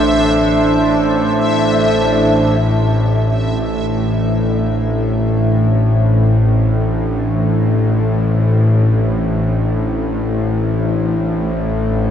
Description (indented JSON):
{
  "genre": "dark ambient drone",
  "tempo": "free time",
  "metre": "none",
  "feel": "none",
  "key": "A minor",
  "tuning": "A4 = 440 Hz",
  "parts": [
    { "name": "deep dark ambient pad", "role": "sustained chords", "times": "0.0-12.1 s", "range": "D4 to C5", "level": "-20 LUFS", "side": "right 2 dB", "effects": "chorus, built-in reverb" },
    { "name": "bowed-like drone", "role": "drone", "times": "0.0-12.1 s", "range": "A1 to A2", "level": "-14 LUFS", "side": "left 1 dB", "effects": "built-in reverb" },
    { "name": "backwards swelling texture", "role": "texture", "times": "0.0-2.6 s", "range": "E5", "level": "-21 LUFS", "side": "left 1 dB", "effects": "built-in reverb" }
  ],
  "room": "wet huge ambient reverb, RT60 7.8 s",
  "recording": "faint mains hum",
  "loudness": "-13 LUFS",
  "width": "side -9 dB against mid",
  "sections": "0.0-2.6 A section; 2.6-12.1 B section",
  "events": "fade-in on ambient pad 2.6-12.1",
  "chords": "0.0 Am"
}